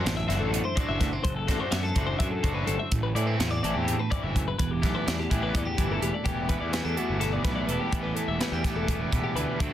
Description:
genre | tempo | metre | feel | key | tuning
math rock and midwest emo | 251 BPM (eighths) | 7/8 | straight | E minor | A4 = 440 Hz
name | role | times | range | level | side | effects
twelve-string electric guitar | accompaniment | 0.0-9.7 s | E2 to A4 | -32 LUFS | right 5 dB | none
twelve-string electric guitar | arpeggios | 0.0-9.7 s | F#4 to E5 | -33 LUFS | left 7 dB | none
raw garage guitar | riff | 0.0-9.7 s | D3 to C5 | -32 LUFS | left 1 dB | overdrive
fuzz picked electric bass | bass | 0.1-9.7 s | E1 to A2 | -31 LUFS | equal | overdrive
crisp fusion drum kit | drums | 0.1-9.7 s | hi-hat, kick drum, snare drum | -30 LUFS | equal | none
room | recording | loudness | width
little or no reverb | dense, heavily limited modern master | -25 LUFS | side -11 dB against mid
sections
0.0-6.3 A section; 6.3-9.7 B section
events
none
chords
0.0 D9/F#; 4.6 Em7; 6.3 Em11

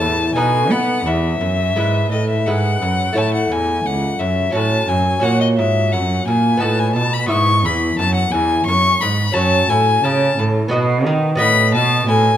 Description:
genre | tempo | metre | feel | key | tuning
classical, baroque-style sonata movement with continuo | 87 BPM | 3/4 | straight | E major | A4 = 439 Hz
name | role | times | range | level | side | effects
rich violin | melody | 0.0-12.4 s | D#5 to C#6 | -18 LUFS | left 4 dB | none
lute | accompaniment | 0.0-12.4 s | E2 to E5 | -21 LUFS | equal | none
warm cello | bass | 0.0-12.4 s | C#2 to B3 | -18 LUFS | right 2 dB | none
room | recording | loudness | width
moderate recital hall reverb, RT60 1.4 s | none | -14 LUFS | side -10 dB against mid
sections
0.0-3.2 A section; 3.2-12.4 A section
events
none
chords
0.4 B7; 1.1 E; 3.2 A; 4.5 F#m/A; 5.2 F#; 6.6 B7/A; 7.3 E; 9.4 F#m; 10.7 B; 11.4 B7/A

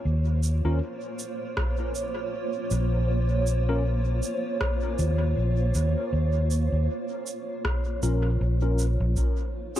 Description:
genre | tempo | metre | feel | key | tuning
ambient dub | 79 BPM | 4/4 | swing 57% on 16ths | unclear | A4 = 440 Hz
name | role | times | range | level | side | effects
granular cloud pad | sustained chords | 0.0-9.8 s | Bb3 to Db5 | -31 LUFS | right 1 dB | built-in reverb
fingered electric bass | bass | 0.1-9.1 s | Bb1 to Eb2 | -23 LUFS | equal | tube saturation
electronic shaker and rim click | drums | 0.4-9.8 s | none | -35 LUFS | right 1 dB | dub echo
tine electric piano | stabs | 0.7-9.8 s | Db4 to Bb4 | -33 LUFS | left 3 dB | analog chorus, dub echo
electronic kick drum | drums | 1.6-9.3 s | none | -28 LUFS | equal | none
room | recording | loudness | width
light reverb | echo-heavy mix | -24 LUFS | side -12 dB against mid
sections
0.0-9.2 A section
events
none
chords
0.0 Bbm; 9.2 Eb7(no3)

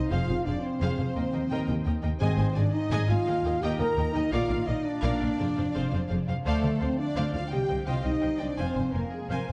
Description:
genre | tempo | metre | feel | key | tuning
cinematic | 113 BPM (dotted quarters) | 12/8 | straight | unclear | A4 = 440 Hz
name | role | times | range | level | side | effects
warm symphonic violin section | second line | 0.0-9.5 s | Ab4 to Bb5 | -41 LUFS | equal | none
mellow French horn section | sustained chords | 0.0-9.5 s | Ab3 to Bb4 | -32 LUFS | equal | none
concert harp | arpeggios | 0.0-9.5 s | F2 to C6 | -40 LUFS | equal | none
warm symphonic violin section | melody | 0.1-9.5 s | F5 to Ab5 | -43 LUFS | equal | none
rich symphonic viola section | accompaniment | 0.1-9.5 s | Ab4 to F5 | -40 LUFS | equal | none
dark studio double bass section | bass | 0.1-9.5 s | F1 to Eb2 | -34 LUFS | equal | none
dark symphonic cello section | bass | 0.1-9.5 s | C2 to Bb2 | -34 LUFS | equal | none
timpani | percussion | 2.2-2.7 s | Ab2 | -34 LUFS | equal | none
room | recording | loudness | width
moderate scoring stage reverb, RT60 2.0 s | dark, warm production, nothing above 10.9 kHz | -28 LUFS | mono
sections
0.0-9.5 A section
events
none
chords
0.1 Fm; 1.2 Eb; 2.2 Ab; 3.3 Eb; 4.3 Bb; 5.4 Fm; 6.5 Dm7; 7.5 Cm; 8.6 Fm

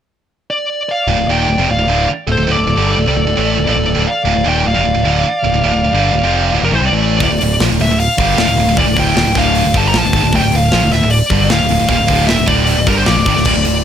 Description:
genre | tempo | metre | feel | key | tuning
heavy metal | 153 BPM | 4/4 | straight | D phrygian, D minor from 7.2 s | A4 = 439 Hz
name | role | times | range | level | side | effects
high-gain lead guitar | melody | 0.5-13.8 s | Bb4 to Bb5 | -16 LUFS | equal | distortion
high-gain lead guitar | second line | 0.9-6.8 s | A4 to D5 | -23 LUFS | right 4 dB | distortion
heavy high-gain guitar | riff | 1.1-13.8 s | D2 to A3 | -18 LUFS | right 10 dB | distortion
sludgy distorted guitar | riff | 1.1-13.8 s | D2 to A3 | -19 LUFS | left 9 dB | overdrive
modern bright picked electric bass | bass | 1.1-13.8 s | D1 to C2 | -18 LUFS | equal | none
thick fuzz guitar | riff | 7.2-13.8 s | D2 to G3 | -20 LUFS | equal | distortion
tight metal drum kit | drums | 7.2-13.7 s | crash cymbal, hi-hat, kick drum, snare drum | -18 LUFS | left 1 dB | none
room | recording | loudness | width
small room ambience | none | -11 LUFS | side -9 dB against mid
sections
0.9-7.2 A section; 7.2-13.8 B section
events
none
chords
0.0 N.C.; 0.9 Dm

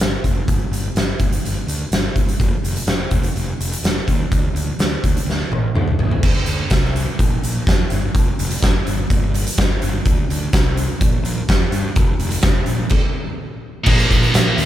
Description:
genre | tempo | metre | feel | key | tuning
quiet-loud alternative rock | 126 BPM | 4/4 | straight | G minor | A4 = 440 Hz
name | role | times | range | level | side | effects
fuzz fingered electric bass | bass | 0.0-14.7 s | F1 to G2 | -22 LUFS | equal | overdrive
oversized low-tuned drum kit | drums | 0.0-14.7 s | crash cymbal, hi-hat, kick drum, snare drum, toms | -17 LUFS | equal | none
scooped high-gain guitar | riff | 13.8-14.7 s | Bb2 to Bb3 | -16 LUFS | right 1 dB | distortion
room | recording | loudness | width
little or no reverb | band playing live in one room | -16 LUFS | side -12 dB against mid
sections
0.0-6.2 A section; 6.2-13.9 B section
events
drum fill 5.3-6.2; stop 12.9-13.9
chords
0.0 G5; 2.4 N.C.; 4.3 D5; 6.2 Csus2; 7.2 Bb5; 8.1 N.C.; 10.0 Csus2; 11.0 Bb5; 11.9 Fsus4; 13.9 Bb5

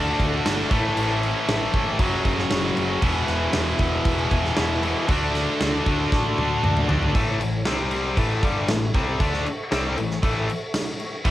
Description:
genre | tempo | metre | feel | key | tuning
hard rock | 117 BPM | 4/4 | straight | A major | A4 = 439 Hz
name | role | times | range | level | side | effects
mellow tonewheel organ | sustained chords | 0.0-11.3 s | E4 to C#6 | -34 LUFS | right 1 dB | chorus vibrato, slow rotary speaker, cassette tape
high-gain distorted guitar | riff | 0.0-11.3 s | G2 to F#4 | -29 LUFS | right 2 dB | distortion, cassette tape
scooped high-gain guitar | riff | 0.0-7.1, 11.3 s | E2 to D4 | -28 LUFS | right 7 dB | distortion, cassette tape
tight distorted guitar | riff | 0.0-11.3 s | E2 to D4 | -25 LUFS | left 4 dB | distortion, cassette tape
hollow-body short-scale picked electric bass | bass | 0.0-11.3 s | E1 to D2 | -29 LUFS | right 1 dB | none
huge arena drum kit | drums | 0.2-11.3 s | crash cymbal, kick drum, snare drum, toms | -25 LUFS | equal | none
room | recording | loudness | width
light reverb | home recording on cassette | -20 LUFS | side -14 dB against mid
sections
0.0-7.1 A section; 7.1-11.3 B section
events
drum fill 6.1-7.1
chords
0.0 D; 0.7 A; 2.0 F#m; 3.0 E; 5.1 D; 7.1 A; 7.7 C5; 8.2 A

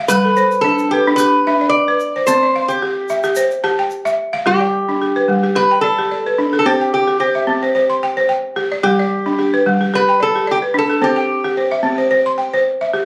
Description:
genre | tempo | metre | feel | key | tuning
west african traditional, West African string and xylophone music | 110 BPM | 4/4 | swing 55% on 16ths | G mixolydian | A4 = 441 Hz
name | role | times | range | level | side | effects
balafon | arpeggios | 0.0-13.1 s | G3 to C6 | -18 LUFS | equal | none
lap resonator guitar | melody | 0.1-12.6 s | G4 to D5 | -19 LUFS | equal | none
egg shaker | percussion | 0.1-4.1 s | none | -32 LUFS | equal | none
room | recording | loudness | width
light reverb | recorded on a phone in the room, club reverb | -16 LUFS | mono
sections
0.0-4.5 A section; 4.5-13.1 B section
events
none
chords
0.1 G; 2.3 C; 4.5 G; 6.6 C; 8.8 G; 11.0 C

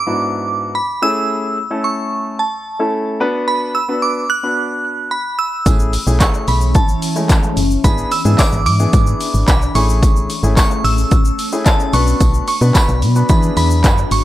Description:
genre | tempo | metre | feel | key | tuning
dance-pop | 110 BPM | 4/4 | straight | A major | A4 = 437 Hz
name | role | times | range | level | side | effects
glassy synth bell | melody | 0.0-14.2 s | A5 to F#6 | -19 LUFS | right 2 dB | chorus, tape echo
warm grand piano | accompaniment | 0.1-14.2 s | G#2 to B4 | -21 LUFS | left 1 dB | sidechain pumping
glassy FM pad | sustained chords | 6.5-14.2 s | E3 to G#4 | -24 LUFS | left 2 dB | ensemble chorus, built-in reverb, sidechain pumping
solid FM bass | bass | 5.7-14.2 s | F#1 to E3 | -15 LUFS | equal | sidechain pumping
deep house drum kit | drums | 5.7-14.2 s | handclaps, hi-hat, kick drum, shaker | -15 LUFS | equal | none
tambourine | percussion | 5.7-14.2 s | none | -30 LUFS | right 4 dB | none
room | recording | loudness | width
little or no reverb | dry, gritty hardware recording | -13 LUFS | side -14 dB against mid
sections
0.0-14.2 A section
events
none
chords
0.0 E7/G#; 1.0 Amaj7; 3.2 Bm; 5.7 Amaj7; 7.8 E7/G#; 9.8 Amaj7; 11.9 Bm; 13.3 E7

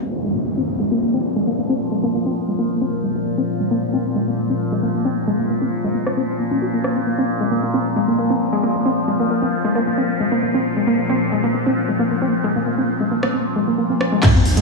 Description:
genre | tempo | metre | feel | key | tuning
driving peak-time techno | 134 BPM | 4/4 | straight | unclear | A4 = 440 Hz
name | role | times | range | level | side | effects
warbly dusty pluck | riff | 0.0-14.6 s | Ab3 to Gb4 | -19 LUFS | left 1 dB | chorus, sidechain pumping, analog delay
overtone-sweeping drone | drone | 0.8-14.6 s | Bb2 to F3 | -23 LUFS | left 1 dB | chorus, built-in reverb, sidechain pumping
downlifter and sub drop | sound effects | 0.0-3.5, 14.2-14.6 s | none | -25 LUFS | equal | none
techno drum kit | drums | 6.1-6.9, 13.2-14.6 s | crash cymbal, handclaps, hi-hat, ride cymbal, rim click | -25 LUFS | equal | overdrive, studio reverb
electronic kick drum | drums | 14.2-14.3 s | none | -15 LUFS | equal | overdrive, studio reverb
growling 808-style bass | bass | 14.3-14.6 s | Bb1 | -20 LUFS | right 1 dB | tube saturation, sidechain pumping, low-pass filter
room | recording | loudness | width
wet lush hall reverb, RT60 1.9 s | dreamy mix soaked in reverb, low-pass filter, studio ambience | -17 LUFS | side -2 dB against mid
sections
0.0-14.2 A section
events
filter sweep on synth arpeggio sound 0.0-14.2; filter sweep 0.0-14.2; impact 14.2-14.6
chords
0.0 Bb5

